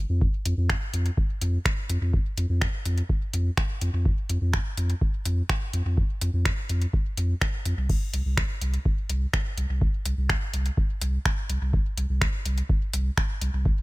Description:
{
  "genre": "dub techno",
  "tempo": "125 BPM",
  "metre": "4/4",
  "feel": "straight",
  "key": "unclear",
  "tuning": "A4 = 441 Hz",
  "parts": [
    { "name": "warm sub bass", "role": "bass", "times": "0.0-13.7 s", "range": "C2 to F2", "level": "-24 LUFS", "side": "equal", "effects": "sidechain pumping" },
    { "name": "electronic kick drum", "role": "drums", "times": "0.2-13.8 s", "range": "none", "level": "-26 LUFS", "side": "equal", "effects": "none" },
    { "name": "booming analog drum machine", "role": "drums", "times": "0.5-13.5 s", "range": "crash cymbal, finger snaps, hi-hat", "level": "-31 LUFS", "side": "equal", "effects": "dub echo" }
  ],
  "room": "little or no reverb",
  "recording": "none",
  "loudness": "-23 LUFS",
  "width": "side -20 dB against mid",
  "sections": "0.0-13.8 A section",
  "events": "none",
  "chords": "none"
}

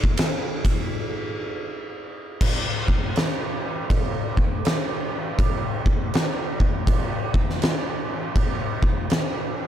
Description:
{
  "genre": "metal",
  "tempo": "81 BPM",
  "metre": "4/4",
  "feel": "swing 63% on 8ths",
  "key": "none",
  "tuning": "none",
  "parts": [
    { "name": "oversized low-tuned drum kit", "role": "drums", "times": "0.0-9.3 s", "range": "crash cymbal, kick drum, ride cymbal, snare drum", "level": "-22 LUFS", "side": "equal", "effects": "none" }
  ],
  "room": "little or no reverb",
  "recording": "none",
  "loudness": "-22 LUFS",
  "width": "side -10 dB against mid",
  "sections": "0.0-2.4 A section; 2.4-9.7 B section",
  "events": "break 0.9-2.4",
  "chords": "none"
}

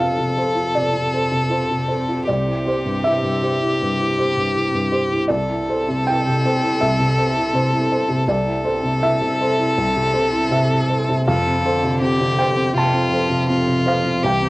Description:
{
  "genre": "neoclassical piano and strings",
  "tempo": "80 BPM",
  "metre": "4/4",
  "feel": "rubato",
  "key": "unclear",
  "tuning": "A4 = 439 Hz",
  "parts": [
    { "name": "clear violin", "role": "melody", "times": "0.0-14.5 s", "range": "F4 to A4", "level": "-21 LUFS", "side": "left 1 dB", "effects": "cassette tape" },
    { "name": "rich cello", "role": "second line", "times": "0.0-14.5 s", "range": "C3 to F3", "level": "-29 LUFS", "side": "right 2 dB", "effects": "cassette tape" },
    { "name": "felt-muted upright piano", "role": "accompaniment", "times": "0.0-14.5 s", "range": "C2 to A5", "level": "-19 LUFS", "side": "equal", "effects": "cassette tape" },
    { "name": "warbly tape-like pad", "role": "sustained chords", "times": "0.3-14.5 s", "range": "C4 to E5", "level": "-34 LUFS", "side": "equal", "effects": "none" }
  ],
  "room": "moderate small room reverb, RT60 0.5 s",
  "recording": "home recording on cassette",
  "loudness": "-16 LUFS",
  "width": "side -20 dB against mid",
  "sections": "0.0-14.5 A section",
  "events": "none",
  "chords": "0.0 F; 2.3 C; 5.3 Am/C; 11.3 F"
}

